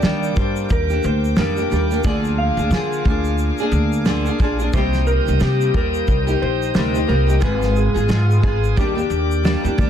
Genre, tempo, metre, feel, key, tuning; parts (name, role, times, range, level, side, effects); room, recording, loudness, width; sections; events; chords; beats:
acoustic pop; 89 BPM; 4/4; swing 60% on 16ths; Eb major; A4 = 440 Hz
clean lap steel guitar; melody; 0.0-9.8 s; G4 to F5; -25 LUFS; left 1 dB; plate reverb, digital delay
nylon-string guitar; accompaniment; 0.0-9.9 s; Ab2 to Ab4; -22 LUFS; left 1 dB; double-tracked left and right, plate reverb
bright tonewheel organ; sustained chords; 0.0-9.9 s; Bb4 to Eb6; -29 LUFS; equal; overdrive, slow rotary speaker, plate reverb
upright bass; bass; 0.0-9.9 s; Ab1 to Eb3; -20 LUFS; equal
cloth-damped thuddy drum kit; drums; 0.0-9.9 s; kick drum, shaker, snare drum; -21 LUFS; equal
light reverb; dense, heavily limited modern master; -16 LUFS; side -9 dB against mid
0.0-9.9 A section
0.0 Ebmaj7; 2.0 Bb7/D; 4.7 Cm7; 7.4 Abm6; 8.8 Ebmaj7
0.03 0.71 1.38 | 2.05 2.72 3.39 4.07 | 4.74 5.41 6.08 6.76 | 7.43 8.11 8.78 9.45